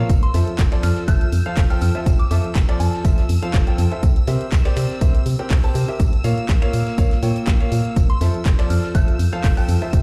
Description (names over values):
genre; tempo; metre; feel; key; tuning
piano house; 122 BPM; 4/4; swing 54% on 16ths; F major; A4 = 437 Hz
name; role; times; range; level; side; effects
string machine, violins; sustained chords; 0.0-10.0 s; E6; -40 LUFS; equal; ensemble chorus, sidechain pumping
clear baby grand piano; riff; 0.0-10.0 s; F3 to A5; -28 LUFS; equal; sidechain pumping, tape echo
organ-like FM bass; bass; 0.0-10.0 s; F1 to C3; -22 LUFS; equal; tube saturation, sidechain pumping
electronic kick drum; drums; 0.1-10.0 s; none; -19 LUFS; equal; overdrive, small room ambience
house drum kit; drums; 0.1-10.0 s; finger snaps, handclaps, hi-hat; -35 LUFS; equal; overdrive, small room ambience
tight funk drum kit; drums; 0.1-10.0 s; hi-hat, snare drum, tambourine; -43 LUFS; equal; high-pass filter on hats, small room ambience, high-pass filter on snare, high-pass filter on perc, high-pass filter on room
soft synth bell; melody; 0.2-3.2, 8.1-9.8 s; A5 to G6; -34 LUFS; equal; chorus, phaser, tape echo
room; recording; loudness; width
small room ambience; played on a big sound system in a bare room, stone room reverb; -18 LUFS; mono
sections
0.0-10.0 A section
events
none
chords
0.1 Fmaj7; 4.0 C7; 6.0 Bbm; 8.0 Fmaj7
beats
| 0.10 0.59 1.08 1.57 | 2.06 2.55 3.05 3.54 | 4.03 4.52 5.01 5.50 | 6.00 6.49 6.98 7.47 | 7.96 8.46 8.95 9.44 | 9.93